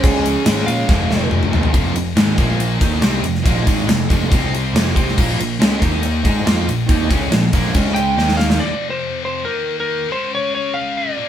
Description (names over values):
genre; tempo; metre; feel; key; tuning
hard rock; 140 BPM; 4/4; straight; unclear; A4 = 441 Hz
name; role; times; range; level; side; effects
lightly driven lead guitar; melody; 0.0-1.3, 7.9-11.3 s; Ab4 to G5; -21 LUFS; equal; none
crunchy overdriven guitar; riff; 0.0-8.6 s; F2 to Ab4; -24 LUFS; right 7 dB; none
overdriven semi-hollow guitar; riff; 0.0-8.6 s; F2 to Ab4; -24 LUFS; equal; none
scooped high-gain guitar; riff; 0.0-11.3 s; F2 to Ab4; -24 LUFS; left 7 dB; distortion
picked electric bass; bass; 0.0-8.6 s; F1 to Bb2; -21 LUFS; equal; none
gated 80s drum kit; drums; 0.0-8.6 s; crash cymbal, kick drum, ride cymbal, snare drum, toms; -17 LUFS; equal; none
room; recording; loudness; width
moderate studio reverb, RT60 0.6 s; band playing live in one room; -15 LUFS; side -10 dB against mid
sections
0.0-1.7 A section; 1.7-8.6 B section; 8.6-11.3 A section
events
drum fill 0.9-1.7, 8.2-8.6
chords
0.0 Db; 0.9 F; 1.7 F5; 2.4 Bb5; 2.8 F5; 4.3 C5; 4.7 F5; 5.2 Bb5; 5.8 Eb5; 6.2 Bb5; 7.8 Db5; 8.2 Eb5; 8.6 F5; 9.5 Eb5; 10.1 Db5